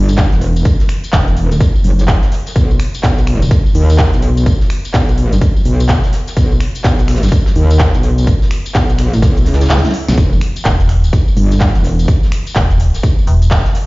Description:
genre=bass house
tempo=126 BPM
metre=4/4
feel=swing 62% on 16ths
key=E dorian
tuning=A4 = 440 Hz
part: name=metallic wobble bass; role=bass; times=0.0-12.1 s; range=E1 to D#2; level=-12 LUFS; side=equal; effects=chorus, tube saturation, sidechain pumping
part: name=big-room dance drum kit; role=drums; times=0.1-13.9 s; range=finger snaps, handclaps, hi-hat, snare drum, tambourine, toms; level=-22 LUFS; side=equal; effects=overdrive, small room reverb
part: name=warm soul drum kit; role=drums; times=0.1-13.9 s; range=hi-hat, snare drum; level=-31 LUFS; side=right 1 dB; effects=sidechain pumping on hats, high-pass filter on hats, small room reverb, high-pass filter on snare, high-pass filter on room
part: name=electronic kick drum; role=drums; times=0.2-13.6 s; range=none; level=-13 LUFS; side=equal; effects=overdrive, small room reverb
part: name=swell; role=sound effects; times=9.4-10.2 s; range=none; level=-24 LUFS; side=right 6 dB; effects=none
part: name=metallic FM bass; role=bass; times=10.7-13.6 s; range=E1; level=-12 LUFS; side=equal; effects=overdrive, sidechain pumping
room=little or no reverb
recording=played on a big sound system in a bare room, stone room reverb, nothing above 7.5 kHz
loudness=-10 LUFS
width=side -22 dB against mid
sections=0.0-13.9 A section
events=swell 9.4-10.2; kick drops out 9.7-10.2; drum fill 9.7-10.2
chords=0.0 Em; 2.6 N.C.

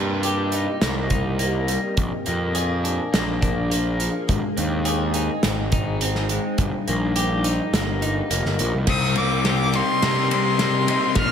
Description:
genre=post-rock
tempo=104 BPM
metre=4/4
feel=straight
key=unclear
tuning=A4 = 440 Hz
part: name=ethereal airy pad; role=sustained chords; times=0.0-11.3 s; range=C4 to Ab5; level=-32 LUFS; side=equal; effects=ensemble chorus, built-in reverb
part: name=clean electric guitar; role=arpeggios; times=0.0-11.3 s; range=G2 to Ab4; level=-26 LUFS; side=left 2 dB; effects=digital delay
part: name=fuzz picked electric bass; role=bass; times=0.0-11.3 s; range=F1 to C3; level=-24 LUFS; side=equal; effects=overdrive
part: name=loose indie drum kit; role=drums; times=0.2-11.3 s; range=crash cymbal, hi-hat, kick drum, ride cymbal, snare drum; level=-25 LUFS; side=equal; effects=none
part: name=dark violin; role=melody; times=8.9-11.3 s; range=C6 to F6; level=-23 LUFS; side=equal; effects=slapback echo, digital delay
part: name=fuzz guitar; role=riff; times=8.9-11.3 s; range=Bb2 to C4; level=-24 LUFS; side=left 10 dB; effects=distortion
room=moderate concert hall reverb, RT60 1.7 s, studio ambience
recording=big arena sound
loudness=-19 LUFS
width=side -8 dB against mid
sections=0.0-8.9 A section; 8.9-11.3 B section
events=build-up 8.9-11.3; drum fill 8.9-11.3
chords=0.0 Cm7; 2.0 Bb7; 4.3 Ab; 6.6 Ebadd9/G; 8.9 Cm7

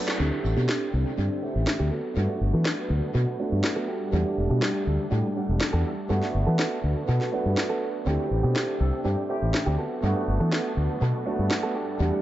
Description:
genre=filtered disco house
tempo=122 BPM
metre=4/4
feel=straight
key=G major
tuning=A4 = 441 Hz
part: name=clear grand piano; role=accompaniment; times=0.0-12.2 s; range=F#3 to F#5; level=-30 LUFS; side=right 2 dB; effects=phaser, low-pass filter, dub echo
part: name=string machine, full ensemble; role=sustained chords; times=0.0-12.2 s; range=F#3 to A5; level=-36 LUFS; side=left 1 dB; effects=ensemble chorus, vintage 12-bit sampler grit, low-pass filter
part: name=direct-recorded clean electric guitar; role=riff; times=0.0-12.2 s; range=B3 to D5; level=-33 LUFS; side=right 2 dB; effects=vintage 12-bit sampler grit, low-pass filter, dub echo
part: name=house drum kit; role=drums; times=0.1-11.6 s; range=hi-hat, snare drum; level=-32 LUFS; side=left 1 dB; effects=overdrive, small room ambience, dub echo
part: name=fuzz fingered electric bass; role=bass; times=0.2-12.1 s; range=E1 to E3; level=-25 LUFS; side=equal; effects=overdrive, tube saturation, low-pass filter
part: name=muted trumpet section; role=melody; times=0.9-1.8, 4.9-9.7 s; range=G4 to B4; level=-49 LUFS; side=equal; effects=none
room=light reverb, studio reverb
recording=echo-heavy mix, nothing above 7.8 kHz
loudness=-23 LUFS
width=side -14 dB against mid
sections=0.2-12.2 A section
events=clean electric guitar fill 0.0; drum fill 0.0; band accent 0.1; filter sweep 0.2-12.2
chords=0.2 D7sus4; 1.9 Gmaj9; 3.9 Em11; 6.1 Gmaj9; 8.1 D7sus4; 9.8 Gmaj9

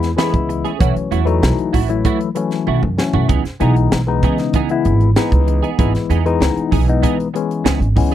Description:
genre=electric jazz fusion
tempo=96 BPM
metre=4/4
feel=straight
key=C# minor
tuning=A4 = 440 Hz
part: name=barky tine electric piano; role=accompaniment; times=0.0-8.1 s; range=E3 to E4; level=-19 LUFS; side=left 6 dB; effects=medium stereo tremolo, phaser
part: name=upright bass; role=bass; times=0.0-8.1 s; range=G#1 to C#3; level=-17 LUFS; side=right 1 dB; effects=none
part: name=crisp fusion drum kit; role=drums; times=0.0-8.1 s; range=hi-hat, kick drum, snare drum, toms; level=-19 LUFS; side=right 1 dB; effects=none
part: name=semi-hollow electric guitar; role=stabs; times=0.2-8.1 s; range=E3 to G#4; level=-22 LUFS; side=right 16 dB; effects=analog chorus
room=little or no reverb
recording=dry, close 1970s-style studio recording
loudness=-14 LUFS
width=side -12 dB against mid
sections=0.0-8.1 A section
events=drum fill 2.7-3.3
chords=0.0 Amaj7; 0.8 B7sus4; 3.3 C#m9

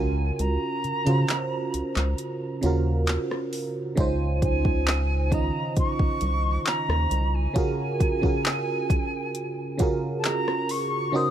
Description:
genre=contemporary R&B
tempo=67 BPM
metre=4/4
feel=straight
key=unclear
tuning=A4 = 440 Hz
part: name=breathy jazz flute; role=melody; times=0.0-11.3 s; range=Ab5 to Eb6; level=-30 LUFS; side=equal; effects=tape echo
part: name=FM electric piano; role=accompaniment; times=0.0-11.3 s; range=Db3 to Eb5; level=-27 LUFS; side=right 2 dB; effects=chorus
part: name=rubbery square bass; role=bass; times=0.0-7.5 s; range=C2 to Db3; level=-25 LUFS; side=equal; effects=none
part: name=smooth R&B drum kit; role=drums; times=0.4-10.9 s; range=handclaps, hi-hat, kick drum, rim click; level=-26 LUFS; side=equal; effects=overdrive
room=little or no reverb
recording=none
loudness=-23 LUFS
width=side -10 dB against mid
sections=0.0-11.3 A section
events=kick muted 0.4-4.0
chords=0.0 Ebm9/Db; 4.0 Dbmaj9; 7.6 Gbmaj9/Db

